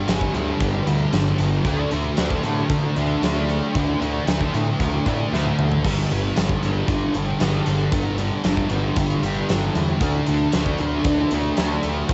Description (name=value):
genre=rock, shoegaze and dream pop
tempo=115 BPM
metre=4/4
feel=straight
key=unclear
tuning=A4 = 440 Hz
part: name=thick fuzz guitar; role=riff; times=0.0-12.1 s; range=G2 to D4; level=-24 LUFS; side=equal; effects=distortion, ensemble chorus, cassette tape
part: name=growling picked electric bass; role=bass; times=0.1-12.1 s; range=G1 to D3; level=-28 LUFS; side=equal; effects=overdrive
part: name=huge arena drum kit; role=drums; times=0.1-12.1 s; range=crash cymbal, hi-hat, kick drum, snare drum, toms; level=-27 LUFS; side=equal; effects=none
room=moderate studio ambience, RT60 0.5 s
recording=home recording on cassette, nothing above 8.0 kHz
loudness=-21 LUFS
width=mono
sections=0.0-5.8 A section; 5.8-12.1 B section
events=drum fill 5.3-5.8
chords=0.0 G5; 1.7 D5; 5.8 G5; 10.0 D5